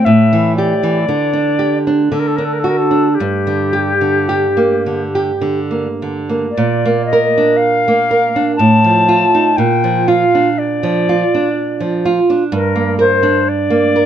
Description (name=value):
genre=romantic duo for flute and classical guitar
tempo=52-64 BPM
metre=3/4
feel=rubato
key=G minor, Bb major from 6.5 s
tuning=A4 = 441 Hz
part: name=silver concert flute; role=melody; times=0.0-14.1 s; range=G4 to A5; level=-15 LUFS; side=left 3 dB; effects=none
part: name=nylon-string guitar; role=accompaniment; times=0.0-14.1 s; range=G2 to Bb4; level=-13 LUFS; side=right 2 dB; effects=none
room=light reverb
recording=dark, warm production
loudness=-12 LUFS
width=side -9 dB against mid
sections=0.0-6.5 A section; 6.5-14.1 B section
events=none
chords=0.1 A5; 1.1 G5/D; 2.1 D; 3.2 Gm; 6.5 Bb; 8.6 F7/A; 9.6 Bb; 12.5 Gm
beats=| 0.07 1.07 2.11 | 3.19 4.29 5.41 | 6.54 7.60 8.58 | 9.58 10.58 11.57 | 12.52 13.47